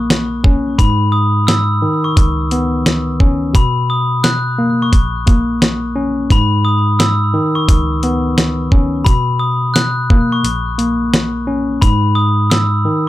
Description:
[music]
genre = hip hop, boom-bap hip-hop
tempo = 87 BPM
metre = 4/4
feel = swing 62% on 16ths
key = unclear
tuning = A4 = 440 Hz
[part]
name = tine electric piano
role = accompaniment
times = 0.0-13.1 s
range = A#1 to C#4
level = -15 LUFS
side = equal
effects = overdrive
[part]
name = dusty soul sampler-style drum kit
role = drums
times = 0.1-12.7 s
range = hi-hat, kick drum, snare drum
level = -12 LUFS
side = equal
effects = none
[part]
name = glockenspiel with soft plastic mallets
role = melody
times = 0.8-13.0 s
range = B5 to F#6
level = -19 LUFS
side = left 2 dB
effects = tape echo
[sound]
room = light reverb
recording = none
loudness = -12 LUFS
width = side -15 dB against mid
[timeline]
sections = 0.0-13.1 A section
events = break 10.4-11.8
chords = 0.0 A#m; 0.8 N.C.; 1.8 C#sus2; 3.5 Bmaj7; 4.9 A#m; 6.3 N.C.; 7.3 C#sus2; 9.1 Bmaj7; 10.4 A#m; 11.8 N.C.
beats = 0.10 | 0.79 1.48 2.17 2.86 | 3.55 4.24 4.92 5.62 | 6.30 6.99 7.68 8.37 | 9.06 9.75 10.44 11.13 | 11.82 12.51

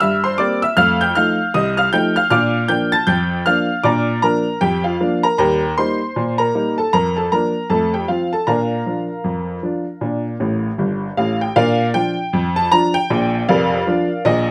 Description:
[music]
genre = ragtime piano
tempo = 78 BPM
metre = 2/4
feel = swing 59% on 16ths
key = Bb major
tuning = A4 = 440 Hz
[part]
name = clear upright piano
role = solo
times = 0.0-14.5 s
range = F1 to A6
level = -18 LUFS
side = equal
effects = none
[sound]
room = light reverb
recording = close, detailed microphones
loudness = -18 LUFS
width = mono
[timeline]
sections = 0.0-11.6 A section; 11.6-14.5 B section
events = upright piano fill 10.4-11.6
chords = 0.0 C7; 0.8 F7; 2.3 Bb; 5.4 Eb; 6.9 Bb/F; 7.7 F; 8.5 Bb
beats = 0.01 | 0.78 1.54 | 2.31 3.08 | 3.85 4.62 | 5.38 6.15 | 6.92 7.69 | 8.47 9.24 | 10.01 10.79 | 11.56 12.33 | 13.10 13.86

